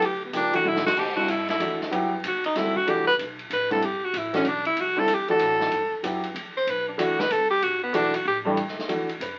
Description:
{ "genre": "modal jazz", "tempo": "189 BPM", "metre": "3/4", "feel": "swing 64% on 8ths", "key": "C lydian", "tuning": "A4 = 441 Hz", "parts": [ { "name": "clear tenor saxophone", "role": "melody", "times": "0.0-8.4 s", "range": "B3 to C5", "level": "-26 LUFS", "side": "equal", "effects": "none" }, { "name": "upright bass", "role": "bass", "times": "0.0-9.4 s", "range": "G1 to A2", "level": "-46 LUFS", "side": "equal", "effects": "none" }, { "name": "vintage drum kit", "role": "drums", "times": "0.0-9.3 s", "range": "crash cymbal, hi-hat, kick drum, ride cymbal, snare drum, toms", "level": "-35 LUFS", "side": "equal", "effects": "none" }, { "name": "clear baby grand piano", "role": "accompaniment", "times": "0.3-9.4 s", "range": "G2 to B4", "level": "-29 LUFS", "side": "equal", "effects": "none" } ], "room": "wet studio reverb, RT60 0.5 s", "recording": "very old 78 rpm record, vinyl crackle, nothing above 7.7 kHz", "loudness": "-25 LUFS", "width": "mono", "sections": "1.0-8.6 A section", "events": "tenor saxophone solo 0.0-8.6; drum fill 0.7-1.0", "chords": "0.0 Gmaj9; 1.0 Cadd9; 2.9 Em7; 4.8 Cadd9; 6.7 Em7; 8.6 Gmaj9 (rootless)", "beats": "| 0.02 0.34 0.65 | 0.97 1.29 1.60 | 1.92 2.24 2.56 | 2.87 3.19 3.51 | 3.82 4.14 4.46 | 4.77 5.09 5.41 | 5.72 6.04 6.36 | 6.67 6.99 7.30 | 7.62 7.94 8.25 | 8.57 8.89 9.20" }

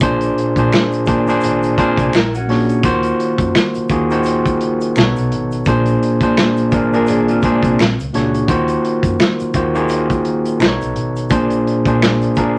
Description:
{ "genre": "R&B, neo-soul", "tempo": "85 BPM", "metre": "4/4", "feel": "swing 58% on 16ths", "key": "Eb dorian", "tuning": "A4 = 440 Hz", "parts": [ { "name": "overdriven tine electric piano", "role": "accompaniment", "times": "0.0-12.6 s", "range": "Bb2 to C#5", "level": "-17 LUFS", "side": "equal", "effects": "none" }, { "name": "vintage muted fingered electric bass", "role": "bass", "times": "0.0-12.4 s", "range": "Ab1 to Gb2", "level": "-26 LUFS", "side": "equal", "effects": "none" }, { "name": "crunchy breakbeat drum kit", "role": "drums", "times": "0.0-12.6 s", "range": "finger snaps, hi-hat, kick drum, snare drum", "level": "-20 LUFS", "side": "equal", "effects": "none" }, { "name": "tube shaker and finger snaps", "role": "percussion", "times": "0.0-12.6 s", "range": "none", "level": "-37 LUFS", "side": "equal", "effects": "none" }, { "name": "electric guitar through a small old amp", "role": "second line", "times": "1.8-8.0, 12.4-12.6 s", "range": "F3 to C5", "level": "-26 LUFS", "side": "equal", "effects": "none" } ], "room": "wet studio ambience, RT60 0.5 s", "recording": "none", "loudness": "-16 LUFS", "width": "mono", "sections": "0.0-12.6 A section", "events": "none", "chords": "0.0 Bb9; 2.1 Bb7alt; 2.8 Ebm69; 5.0 B9; 5.7 Bb9; 7.8 Bb7alt; 8.5 Ebm69; 10.6 B9; 11.3 Bb9", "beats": "| 0.01 0.72 1.42 2.13 | 2.83 3.54 4.25 4.95 | 5.66 6.37 7.07 7.78 | 8.48 9.19 9.89 10.60 | 11.31 12.01" }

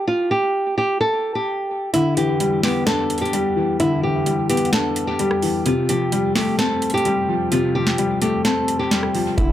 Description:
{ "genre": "hip hop, trap", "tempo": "129 BPM", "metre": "4/4", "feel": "half-time", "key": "unclear", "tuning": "A4 = 441 Hz", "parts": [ { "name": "nylon-string guitar", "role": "melody", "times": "0.0-9.5 s", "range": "E4 to A4", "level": "-21 LUFS", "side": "right 1 dB", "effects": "low-pass filter, dub echo" }, { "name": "dark baby grand piano", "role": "accompaniment", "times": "1.9-9.5 s", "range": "C3 to D4", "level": "-20 LUFS", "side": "left 2 dB", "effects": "low-pass filter" }, { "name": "booming analog drum machine", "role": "drums", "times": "1.9-9.5 s", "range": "hi-hat, kick drum, rim click, snare drum", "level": "-24 LUFS", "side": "right 1 dB", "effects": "dub echo" }, { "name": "clean 808-style bass", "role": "bass", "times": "9.4-9.5 s", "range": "E1", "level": "-20 LUFS", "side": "right 1 dB", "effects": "none" } ], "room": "light reverb, small room ambience", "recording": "echo-heavy mix", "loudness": "-17 LUFS", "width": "side -12 dB against mid", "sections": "0.0-9.5 A section", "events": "kick muted 1.9-9.4", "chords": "0.0 N.C.; 1.9 Em7; 5.7 Fadd9", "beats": "| 0.08 0.54 1.01 1.47 | 1.94 2.40 2.87 3.33 | 3.80 4.26 4.73 5.19 | 5.66 6.12 6.59 7.05 | 7.52 7.98 8.45 8.91 | 9.38" }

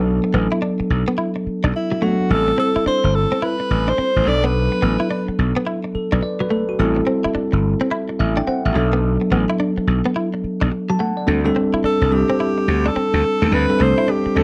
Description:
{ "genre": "R&B", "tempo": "107 BPM", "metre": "4/4", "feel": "swing 63% on 16ths", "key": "unclear", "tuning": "A4 = 442 Hz", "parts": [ { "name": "bell-like tine electric piano", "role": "accompaniment", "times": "0.0-14.4 s", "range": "F#3 to A5", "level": "-23 LUFS", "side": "equal", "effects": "tube saturation" }, { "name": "direct-recorded clean electric guitar", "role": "riff", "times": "0.0-14.3 s", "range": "F#3 to E4", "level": "-26 LUFS", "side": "equal", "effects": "subtle chorus" }, { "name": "gritty slap bass", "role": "bass", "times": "0.0-14.4 s", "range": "G1 to D#2", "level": "-21 LUFS", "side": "equal", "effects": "overdrive" }, { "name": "warm alto saxophone", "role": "melody", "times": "1.8-5.3, 11.9-14.4 s", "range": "E4 to D5", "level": "-23 LUFS", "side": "equal", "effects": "none" } ], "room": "moderate small room reverb, RT60 0.6 s", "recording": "dark, warm production", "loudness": "-19 LUFS", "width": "mono", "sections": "0.0-11.3 A section; 11.3-14.4 B section", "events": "none", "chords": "0.0 Bm7; 2.3 Am7; 4.3 Bm7; 6.8 Am7; 8.8 Bm7; 11.3 D7sus4", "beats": "| 0.06 0.62 1.18 1.74 | 2.30 2.86 3.42 3.99 | 4.55 5.11 5.67 6.23 | 6.79 7.35 7.91 8.47 | 9.03 9.59 10.15 10.71 | 11.28 11.84 12.40 12.96 | 13.52 14.08" }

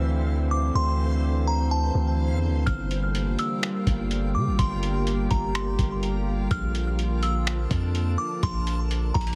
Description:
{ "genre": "hip hop, atmospheric cloud-rap", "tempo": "125 BPM", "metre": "4/4", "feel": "half-time", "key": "unclear", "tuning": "A4 = 439 Hz", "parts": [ { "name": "delicate synth tine bell", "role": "melody", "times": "0.0-9.4 s", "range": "A5 to F6", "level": "-34 LUFS", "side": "equal", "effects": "chorus, phaser, low-pass filter, digital delay" }, { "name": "warbly tape-like pad", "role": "sustained chords", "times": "0.0-9.4 s", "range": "D3 to G4", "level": "-32 LUFS", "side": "equal", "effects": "chorus, built-in reverb, sidechain pumping" }, { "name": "long sustained 808-style bass", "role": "bass", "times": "0.0-9.4 s", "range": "G1 to D3", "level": "-27 LUFS", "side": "equal", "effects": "none" }, { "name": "backwards swelling texture", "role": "texture", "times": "0.0-9.4 s", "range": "E3 to A5", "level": "-41 LUFS", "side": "equal", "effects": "built-in reverb" }, { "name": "trip hop sampler-style drum kit", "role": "drums", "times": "2.7-9.4 s", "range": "finger snaps, hi-hat, kick drum", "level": "-31 LUFS", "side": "equal", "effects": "overdrive" } ], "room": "little or no reverb", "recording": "heavily compressed radio sound", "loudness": "-25 LUFS", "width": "mono", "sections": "0.0-9.4 A section", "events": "none", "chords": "0.0 Dm9; 2.7 Gm7; 6.5 Bbmaj7", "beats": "0.27 | 0.75 1.23 1.71 2.19 | 2.67 3.15 3.63 4.11 | 4.59 5.07 5.55 6.03 | 6.51 6.99 7.47 7.95 | 8.43 8.91" }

